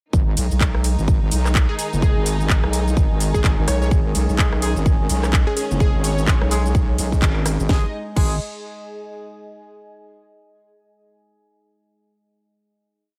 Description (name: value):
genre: bass house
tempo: 127 BPM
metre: 4/4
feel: swing 59% on 16ths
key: G# minor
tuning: A4 = 442 Hz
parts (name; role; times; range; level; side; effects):
- warm studio string section; sustained chords; 0.1-7.9 s; D#3 to D#5; -32 LUFS; equal; sidechain pumping
- wobble bass; bass; 0.1-8.4 s; F#1 to B1; -23 LUFS; equal; chorus, overdrive, sidechain pumping
- electronic kick drum; drums; 0.1-8.3 s; none; -20 LUFS; equal; none
- house drum kit; drums; 0.1-8.3 s; crash cymbal, handclaps, hi-hat, ride cymbal, rim click, shaker, snare drum; -28 LUFS; equal; none
- deep dark ambient pad; texture; 1.0-9.5 s; G#4 to G#5; -35 LUFS; equal; chorus, built-in reverb, sidechain pumping
- plucky unison lead; melody; 1.7-6.7 s; G#4 to C#5; -31 LUFS; equal; delay
- bright horn section; stabs; 4.4-8.3 s; G#3 to G#4; -32 LUFS; equal; sidechain pumping, delay
room: digital ambience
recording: none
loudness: -19 LUFS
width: mono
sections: 0.1-7.7 drop; 7.7-9.6 final chord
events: drop 0.1-7.7; band accent 7.2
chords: 0.1 G#5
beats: | 0.13 0.61 1.08 1.55 | 2.02 2.50 2.97 3.44 | 3.91 4.38 4.86 5.33 | 5.80 6.28 6.75 7.22 | 7.69 8.16 8.64 9.11